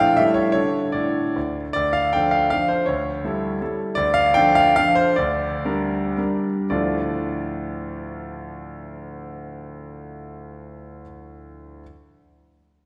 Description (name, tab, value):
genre	classical, romantic triple-time dance for piano with dotted rhythms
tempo	103-172 BPM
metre	3/4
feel	rubato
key	D minor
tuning	A4 = 439 Hz
part	clear concert grand piano	solo	0.0-11.8 s	D2 to G5	-22 LUFS	equal	none
room	wet concert hall reverb, RT60 2.0 s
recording	recorded in a church or concert hall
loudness	-21 LUFS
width	mono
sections	0.0-1.8 A section; 1.8-6.7 B section; 6.7-9.8 C section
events	slowing down 3.4-6.7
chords	0.2 A7; 0.6 D5; 1.8 Dm; 2.9 A7/D; 4.0 Dm; 5.2 Gm/D; 6.7 Dm